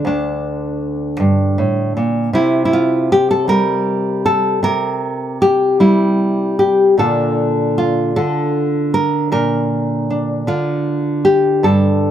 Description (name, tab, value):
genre	folk, solo fingerstyle acoustic guitar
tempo	52 BPM (dotted quarters)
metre	6/8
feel	rubato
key	unclear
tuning	A4 = 440 Hz
part	nylon-string guitar	solo	0.0-12.1 s	D2 to Bb4	-14 LUFS	equal	none
room	light reverb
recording	none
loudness	-14 LUFS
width	side -10 dB against mid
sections	0.0-12.1 A section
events	none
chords	0.0 D5; 2.4 C7; 7.0 Bbmaj7